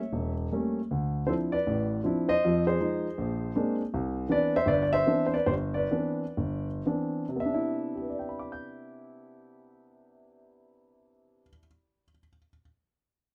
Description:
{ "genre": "solo jazz", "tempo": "106-162 BPM", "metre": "4/4", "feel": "swing 67% on 8ths, rubato", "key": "C major", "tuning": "A4 = 435 Hz", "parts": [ { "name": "warm grand piano", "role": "solo", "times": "0.0-12.6 s", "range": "E1 to G6", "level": "-29 LUFS", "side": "equal", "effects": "none" } ], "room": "moderate studio ambience, RT60 0.5 s", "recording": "none", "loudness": "-29 LUFS", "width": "mono", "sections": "0.0-7.4 A section; 7.4-11.8 B section", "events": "slowing down 3.9-7.4", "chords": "0.0 A7b9; 0.9 Dm9; 2.4 Fm7; 3.2 Bb9; 3.9 Cmaj9" }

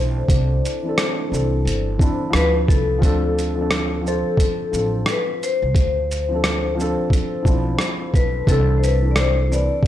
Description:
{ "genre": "lo-fi hip hop", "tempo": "88 BPM", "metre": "4/4", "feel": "swing 64% on 16ths", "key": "D dorian", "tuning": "A4 = 439 Hz", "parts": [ { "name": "vibraphone with medium hard mallets", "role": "melody", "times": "0.0-9.9 s", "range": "A4 to D5", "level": "-24 LUFS", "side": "left 5 dB", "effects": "low-pass filter" }, { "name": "felt-muted upright piano", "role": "accompaniment", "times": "0.0-9.9 s", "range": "E3 to C5", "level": "-24 LUFS", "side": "equal", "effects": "cassette tape, low-pass filter" }, { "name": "deep dark ambient pad", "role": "sustained chords", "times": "0.0-3.0 s", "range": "A3 to E4", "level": "-33 LUFS", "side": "equal", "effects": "chorus, built-in reverb, phaser, low-pass filter" }, { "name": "upright bass", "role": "bass", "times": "0.0-9.7 s", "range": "G1 to D2", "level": "-21 LUFS", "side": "right 1 dB", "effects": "none" }, { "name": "boom bap sampler-style drum kit", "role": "drums", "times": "0.3-9.9 s", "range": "hi-hat, kick drum, rim click, shaker", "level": "-20 LUFS", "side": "equal", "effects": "none" } ], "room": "light reverb", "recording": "dry, gritty hardware recording", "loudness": "-17 LUFS", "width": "side -12 dB against mid", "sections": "0.0-3.0 A section; 3.0-9.9 B section", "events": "none", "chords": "0.0 C69; 2.3 Dm69; 3.0 Dm7; 8.5 C69" }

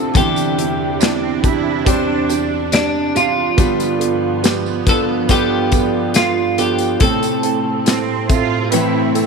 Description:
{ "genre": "pop ballad", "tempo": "70 BPM", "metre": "4/4", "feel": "straight", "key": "C major", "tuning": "A4 = 440 Hz", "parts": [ { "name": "twelve-string electric guitar", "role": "melody", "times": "0.0-8.7 s", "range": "D4 to A4", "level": "-19 LUFS", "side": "right 2 dB", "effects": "spring reverb, slapback echo" }, { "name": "felt-muted upright piano", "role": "accompaniment", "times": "0.0-9.3 s", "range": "D2 to E5", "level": "-20 LUFS", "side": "right 10 dB", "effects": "none" }, { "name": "rich studio string section", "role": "sustained chords", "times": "0.0-9.3 s", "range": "D2 to D4", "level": "-25 LUFS", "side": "right 6 dB", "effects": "none" }, { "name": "fingerpicked steel-string acoustic guitar", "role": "arpeggios", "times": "0.0-9.3 s", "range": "A2 to C5", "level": "-22 LUFS", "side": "left 13 dB", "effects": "none" }, { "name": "modern studio drum kit", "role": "drums", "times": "0.2-9.3 s", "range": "hi-hat, kick drum, snare drum", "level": "-18 LUFS", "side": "left 2 dB", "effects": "none" }, { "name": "tambourine", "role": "percussion", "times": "0.2-9.3 s", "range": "none", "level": "-33 LUFS", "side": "right 12 dB", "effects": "none" }, { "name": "rich symphonic cello section", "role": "second line", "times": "1.0-2.5, 7.9-9.3 s", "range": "C4 to F4", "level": "-24 LUFS", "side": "right 8 dB", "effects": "slapback echo" } ], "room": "moderate plate reverb, RT60 3.2 s", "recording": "1960s-style stereo with parts hard left and right", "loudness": "-14 LUFS", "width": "side -4 dB against mid", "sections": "0.0-9.3 A section", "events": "none", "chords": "0.1 Cadd9/E; 3.6 G7; 7.0 Am" }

